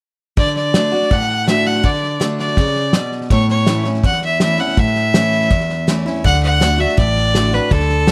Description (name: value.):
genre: honky-tonk and classic country.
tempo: 164 BPM.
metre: 4/4.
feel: straight.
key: D major.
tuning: A4 = 439 Hz.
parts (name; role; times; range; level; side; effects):
clear fiddle; melody; 0.4-8.1 s; A4 to F#5; -20 LUFS; equal; none.
picked steel-string acoustic guitar; accompaniment; 0.4-8.1 s; E2 to F#4; -21 LUFS; equal; none.
unplugged drum kit; drums; 0.4-8.1 s; hi-hat, kick drum, snare drum; -20 LUFS; equal; none.
vintage muted fingered electric bass; bass; 6.2-8.1 s; A1 to D2; -20 LUFS; equal; none.
room: studio reverb.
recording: dry, close 1970s-style studio recording.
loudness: -16 LUFS.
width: mono.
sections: 0.4-6.2 A section; 6.2-8.1 B section.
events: none.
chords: 0.4 D; 3.3 A; 6.2 D.